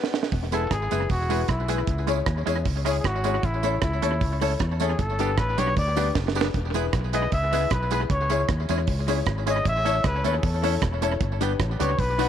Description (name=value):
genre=ska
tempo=154 BPM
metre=4/4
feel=straight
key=E major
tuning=A4 = 440 Hz
part: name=deep reggae drum kit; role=drums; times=0.0-12.3 s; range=hi-hat, kick drum, rim click, snare drum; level=-28 LUFS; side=right 3 dB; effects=tape echo
part: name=fingered electric bass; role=bass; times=0.3-12.3 s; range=E1 to E2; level=-27 LUFS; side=equal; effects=none
part: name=breathy trumpet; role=melody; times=0.5-12.3 s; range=E4 to E5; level=-28 LUFS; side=equal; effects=none
part: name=semi-hollow electric guitar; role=accompaniment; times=0.5-12.3 s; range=F#3 to A4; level=-31 LUFS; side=right 10 dB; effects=tape echo
part: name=dark upright piano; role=stabs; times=0.5-12.3 s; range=D4 to C#5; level=-29 LUFS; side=left 10 dB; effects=tape echo
part: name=tambourine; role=percussion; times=0.5-12.3 s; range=none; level=-43 LUFS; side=right 12 dB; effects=tape echo
room=moderate spring reverb, RT60 2.1 s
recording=1960s-style stereo with parts hard left and right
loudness=-22 LUFS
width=side -9 dB against mid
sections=0.3-12.3 A section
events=drum fill 0.0-0.3, 6.2-6.5; band accent 0.0-0.3; trumpet solo 0.3-12.3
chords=0.3 E; 1.9 C#m; 3.4 A; 5.0 G; 6.5 E; 8.1 C#m; 9.7 A; 11.2 G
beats=| 0.32 0.71 1.10 1.49 | 1.88 2.27 2.66 3.05 | 3.44 3.82 4.21 4.60 | 4.99 5.38 5.77 6.16 | 6.54 6.93 7.32 7.71 | 8.10 8.49 8.88 9.27 | 9.65 10.04 10.43 10.82 | 11.21 11.60 11.99